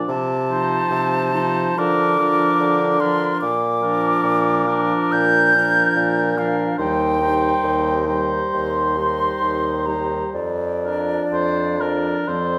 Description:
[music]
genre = classical, slow romantic movement for wind quintet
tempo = 61-74 BPM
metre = 4/4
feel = rubato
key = Bb major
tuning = A4 = 439 Hz
[part]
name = warm oboe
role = second line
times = 0.0-12.6 s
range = Bb4 to C5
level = -28 LUFS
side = equal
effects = none
[part]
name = clear clarinet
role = accompaniment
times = 0.0-12.6 s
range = C4 to Eb4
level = -30 LUFS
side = equal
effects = none
[part]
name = dark French horn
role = accompaniment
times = 0.0-12.6 s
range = F3 to G3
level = -30 LUFS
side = equal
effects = none
[part]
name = mellow hollow silver concert flute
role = melody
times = 0.1-12.6 s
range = D5 to G6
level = -23 LUFS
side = equal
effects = none
[part]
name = warm bassoon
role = bass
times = 0.1-12.6 s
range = Eb2 to D3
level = -25 LUFS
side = equal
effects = none
[sound]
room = wet recital hall reverb, RT60 1.5 s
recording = none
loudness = -19 LUFS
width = mono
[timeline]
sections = 0.0-12.6 A section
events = none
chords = 0.1 F7/C; 1.8 Bb/D; 3.4 Bb; 6.8 Cm/Eb; 10.4 Bb/F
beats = | 0.10 0.91 1.79 2.61 | 3.43 4.24 5.13 5.96 | 6.79 7.63 8.54 9.42 | 10.35 11.33 12.28

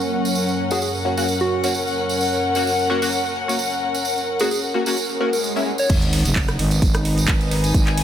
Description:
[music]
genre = bass house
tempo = 130 BPM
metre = 4/4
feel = swing 54% on 16ths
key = unclear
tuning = A4 = 438 Hz
[part]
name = sweeping resonant pad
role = sustained chords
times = 0.0-5.9 s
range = F#2 to C#4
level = -28 LUFS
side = equal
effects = chorus, sidechain pumping
[part]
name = tambourine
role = percussion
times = 0.0-8.0 s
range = none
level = -28 LUFS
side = right 4 dB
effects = none
[part]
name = dark studio string section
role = texture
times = 0.0-8.0 s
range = C#4 to G#5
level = -23 LUFS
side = left 2 dB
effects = sidechain pumping
[part]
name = soft struck synth lead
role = melody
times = 0.7-5.9 s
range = F#4 to C#5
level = -25 LUFS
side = right 1 dB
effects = chorus, tape echo
[part]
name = band-passed chord stab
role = stabs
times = 0.7-5.7 s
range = A#3 to F#4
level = -26 LUFS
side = left 3 dB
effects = phaser, ensemble chorus, sidechain pumping, tape echo
[part]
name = swell and sub drop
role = sound effects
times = 5.1-7.7 s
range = none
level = -30 LUFS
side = right 1 dB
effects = none
[part]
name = growling FM bass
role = bass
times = 5.9-8.0 s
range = F#1 to G#1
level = -20 LUFS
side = right 1 dB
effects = tube saturation, sidechain pumping
[part]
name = electronic kick drum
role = drums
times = 5.9-7.8 s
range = none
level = -19 LUFS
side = right 1 dB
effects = none
[part]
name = house drum kit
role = drums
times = 5.9-8.0 s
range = crash cymbal, handclaps, hi-hat, ride cymbal, rim click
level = -25 LUFS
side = right 1 dB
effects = none
[sound]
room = moderate lush hall reverb, RT60 1.8 s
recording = none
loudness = -18 LUFS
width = side -10 dB against mid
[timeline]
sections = 0.0-5.9 A section; 5.9-8.0 B section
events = filter sweep on analog synth pad 0.0-5.9; swell 5.1-5.9; drop 5.9-8.0; impact 5.9-7.7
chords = 0.0 F#; 5.9 G#m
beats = | 0.36 0.82 1.28 1.74 | 2.21 2.67 3.13 3.59 | 4.05 4.51 4.97 5.44 | 5.90 6.36 6.82 7.28 | 7.74

